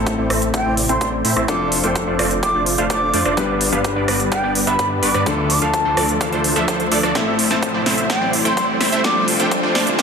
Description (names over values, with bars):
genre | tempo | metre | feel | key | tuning
EDM, festival progressive house | 127 BPM | 4/4 | straight | A minor | A4 = 440 Hz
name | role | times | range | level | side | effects
warm concert grand piano | accompaniment | 0.0-10.0 s | G2 to B4 | -24 LUFS | left 5 dB | sidechain pumping, dub echo
lush unison pad | sustained chords | 0.5-10.0 s | C3 to G4 | -30 LUFS | equal | none
supersaw stab | riff | 0.0-10.0 s | F3 to A5 | -20 LUFS | right 2 dB | sidechain pumping, low-pass filter, dub echo
wide detuned saw bass | bass | 0.0-10.0 s | F1 to A2 | -28 LUFS | right 1 dB | chorus, sidechain pumping
riser | sound effects | 4.4-10.0 s | none | -29 LUFS | right 1 dB | none
big-room dance drum kit | drums | 0.1-10.0 s | hi-hat, rim click, snare drum | -22 LUFS | right 1 dB | soft clipping on snare
electronic kick drum | drums | 0.1-10.0 s | none | -26 LUFS | right 1 dB | high-pass filter on kick, high-pass filter on room
mellow concert flute | melody | 0.5-10.0 s | G5 to D6 | -23 LUFS | equal | dub echo
room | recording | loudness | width
moderate huge ambient reverb, RT60 4.1 s | dense, heavily limited modern master, high-pass filter | -15 LUFS | side -6 dB against mid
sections
0.0-10.0 A section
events
build-up 0.0-10.0; filter sweep on supersaw synth 0.0-10.0; drum fill 7.2-10.0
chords
0.0 Am; 1.5 F6; 3.4 G; 5.3 Dm; 7.2 Am; 9.0 F6